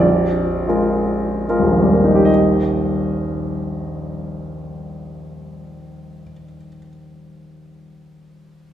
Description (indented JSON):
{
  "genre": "classical, romantic nocturne for solo piano",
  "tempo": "24-28 BPM (dotted quarters)",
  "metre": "9/8",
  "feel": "rubato",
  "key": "Eb major",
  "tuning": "A4 = 441 Hz",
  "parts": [
    { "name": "clear baby grand piano", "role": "solo", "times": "0.0-8.7 s", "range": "Bb0 to Eb5", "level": "-17 LUFS", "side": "equal", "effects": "none" }
  ],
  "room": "wet recital hall reverb, RT60 1.3 s",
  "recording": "recorded in a church or concert hall",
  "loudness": "-15 LUFS",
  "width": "side -11 dB against mid",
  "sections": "0.0-2.3 A section; 2.3-8.7 B section",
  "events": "slowing down 0.0-2.3",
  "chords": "0.0 Bb7; 2.3 Eb",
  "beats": "| 2.27 4.46 6.71"
}